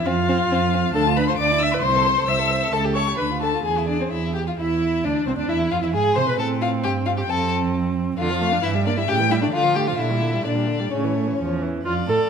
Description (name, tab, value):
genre	quick classical-period movement for string quartet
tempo	133 BPM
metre	2/4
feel	rubato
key	A minor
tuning	A4 = 444 Hz
part	rich violin	melody	0.0-12.2 s	F4 to E6	-24 LUFS	left 8 dB	none
part	rich viola	accompaniment	0.0-12.3 s	C#3 to E5	-25 LUFS	right 2 dB	none
part	rich violin	second line	0.1-12.3 s	C4 to D5	-25 LUFS	left 3 dB	none
part	warm cello	bass	0.1-12.2 s	C2 to D3	-24 LUFS	right 5 dB	none
room	moderate recital hall reverb, RT60 1.6 s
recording	none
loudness	-19 LUFS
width	side -6 dB against mid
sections	0.0-4.6 A section; 4.6-11.9 B section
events	none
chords	0.1 F5; 0.9 Dm; 1.4 Bmadd11/D; 1.8 Am/C; 2.7 A7/C#; 3.2 Dm; 3.7 E; 4.6 Cadd9; 5.5 E; 6.4 Am; 7.3 F5; 8.2 Dm/F; 8.6 Edim/G; 9.1 A7; 9.5 Dm; 10.0 Gm/Bb; 10.9 A